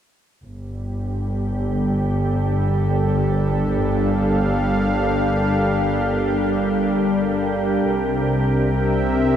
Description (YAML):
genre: ambient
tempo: free time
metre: none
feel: none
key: G minor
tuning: A4 = 440 Hz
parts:
  - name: warm analog pad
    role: sustained chords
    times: 0.4-9.4 s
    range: C3 to F5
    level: -21 LUFS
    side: equal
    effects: chorus
  - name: clear symphonic double bass section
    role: bass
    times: 0.4-9.4 s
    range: G1 to C2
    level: -23 LUFS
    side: equal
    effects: none
  - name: organ-like drone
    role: drone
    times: 0.9-9.4 s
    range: G3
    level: -25 LUFS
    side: right 1 dB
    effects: ensemble chorus, built-in reverb
room: moderate huge ambient reverb, RT60 8.7 s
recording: cassette tape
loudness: -18 LUFS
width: side -9 dB against mid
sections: 0.4-9.4 A section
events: fade-in on analog synth pad 0.4-9.4; fade-out on synth drone 0.4-9.4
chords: 0.4 Gm7; 7.9 C7